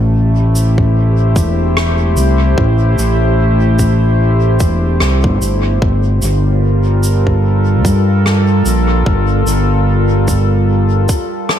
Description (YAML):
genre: ambient dub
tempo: 74 BPM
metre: 4/4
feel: swing 57% on 16ths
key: G dorian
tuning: A4 = 442 Hz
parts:
  - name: warbly tape-like pad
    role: sustained chords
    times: 0.0-11.6 s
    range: G3 to C5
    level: -17 LUFS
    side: equal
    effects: chorus, built-in reverb
  - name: overdriven fingered electric bass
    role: bass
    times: 0.0-11.1 s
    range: E1 to G2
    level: -12 LUFS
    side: equal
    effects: none
  - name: shaker and rim click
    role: drums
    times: 0.6-11.6 s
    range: none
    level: -22 LUFS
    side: left 1 dB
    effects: dub echo
  - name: electronic kick drum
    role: drums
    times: 0.8-11.3 s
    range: none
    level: -17 LUFS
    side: equal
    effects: overdrive
room: studio reverb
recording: echo-heavy mix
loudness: -10 LUFS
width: side -10 dB against mid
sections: 0.0-11.6 A section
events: none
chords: 0.0 Am7; 5.8 Gm9